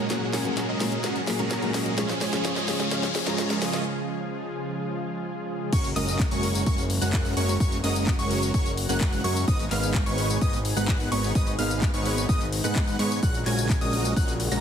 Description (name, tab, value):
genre	EDM, festival progressive house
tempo	128 BPM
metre	4/4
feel	straight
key	F# major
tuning	A4 = 440 Hz
part	dark baby grand piano	accompaniment	0.0-3.8 s	A#2 to A#4	-31 LUFS	left 2 dB	sidechain pumping, ping-pong delay
part	lush unison pad	sustained chords	0.0-14.6 s	A#2 to G#4	-33 LUFS	right 1 dB	chorus, sidechain pumping
part	dense compressed supersaw	riff	0.0-14.6 s	G#3 to A#5	-29 LUFS	right 1 dB	sidechain pumping, low-pass filter, ping-pong delay
part	riser and impact	sound effects	0.0-7.6 s	none	-34 LUFS	left 1 dB	none
part	house drum kit	drums	0.1-14.6 s	crash cymbal, handclaps, hi-hat, snare drum, tambourine	-32 LUFS	left 2 dB	overdrive, high-pass filter on snare, high-pass filter on hats, high-pass filter on cymbals, high-pass filter on perc
part	plucky unison lead	arpeggios	5.7-14.6 s	C#6 to A#6	-32 LUFS	equal	sidechain pumping, ping-pong delay
part	fat analog bass	bass	5.7-14.6 s	F#1 to G#2	-28 LUFS	equal	sidechain pumping
part	electronic kick drum	drums	5.7-14.3 s	none	-24 LUFS	equal	overdrive
room	light reverb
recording	heavily compressed radio sound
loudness	-23 LUFS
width	side -8 dB against mid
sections	0.0-5.7 A section; 5.7-14.6 B section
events	build-up 0.0-5.7; drum fill 0.0-3.9; riser 0.0-3.9; break 3.9-5.7; drop 5.7-14.6; impact 5.7-7.6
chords	0.0 F#add9; 2.0 C#; 5.7 F#add9; 9.5 G#m; 13.2 F#add9/A#